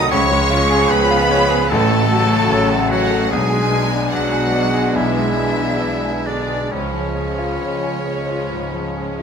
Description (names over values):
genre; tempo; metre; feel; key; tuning
classical, romantic movement for piano and orchestra; 66-76 BPM; 4/4; rubato; unclear; A4 = 440 Hz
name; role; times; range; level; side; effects
clear chamber violin section; melody; 0.0-9.2 s; C#5 to Eb6; -25 LUFS; left 1 dB; none
clear grand piano; melody; 0.0-9.2 s; A1 to G#5; -20 LUFS; left 2 dB; none
clear oboe; second line; 0.0-9.2 s; C#4 to Eb5; -27 LUFS; right 2 dB; none
mellow clarinet; second line; 0.0-9.2 s; C#4 to Eb5; -27 LUFS; equal; none
rich chamber violin section; second line; 0.0-9.2 s; G#3 to G#4; -30 LUFS; equal; none
silver concert flute; second line; 0.0-9.2 s; C#5 to C#6; -26 LUFS; left 1 dB; none
rich chamber viola section; accompaniment; 0.0-9.2 s; E#3 to A3; -28 LUFS; right 1 dB; none
warm trombone section; sustained chords; 0.0-9.2 s; B2 to G#3; -26 LUFS; right 5 dB; none
clear chamber cello section; bass; 0.0-9.2 s; C#3 to Eb4; -26 LUFS; right 5 dB; none
mellow French horn section; sustained chords; 0.1-9.2 s; G#3 to D4; -25 LUFS; left 5 dB; none
rich chamber double bass section; bass; 0.1-9.2 s; A1 to C#2; -24 LUFS; right 2 dB; none
room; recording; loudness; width
moderate recital hall reverb, RT60 1.3 s; none; -15 LUFS; side -6 dB against mid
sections
0.0-9.2 A section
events
none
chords
0.1 C#; 1.7 F#m/A; 3.3 G#dim/B; 6.7 C#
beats
| 0.11 0.90 1.71 2.51 | 3.31 4.12 4.96 5.82 | 6.72 7.63 8.53